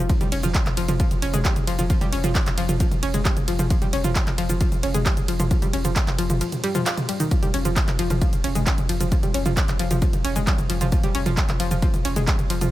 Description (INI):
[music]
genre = driving peak-time techno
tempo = 133 BPM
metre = 4/4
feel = straight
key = unclear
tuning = A4 = 440 Hz
[part]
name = analog pluck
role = riff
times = 0.0-12.7 s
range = Eb3 to F4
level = -26 LUFS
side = equal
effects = chorus, tube saturation, sidechain pumping, dub echo
[part]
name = saturated sub bass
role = bass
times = 0.0-12.7 s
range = F1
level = -27 LUFS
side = equal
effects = overdrive, sidechain pumping, low-pass filter
[part]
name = electronic kick drum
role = drums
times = 0.1-12.4 s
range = none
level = -22 LUFS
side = equal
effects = none
[part]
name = techno drum kit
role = drums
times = 0.1-12.7 s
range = handclaps, hi-hat, ride cymbal, shaker, toms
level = -26 LUFS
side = right 1 dB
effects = none
[sound]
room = little or no reverb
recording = none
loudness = -19 LUFS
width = side -15 dB against mid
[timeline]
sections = 0.0-12.7 A section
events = none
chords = none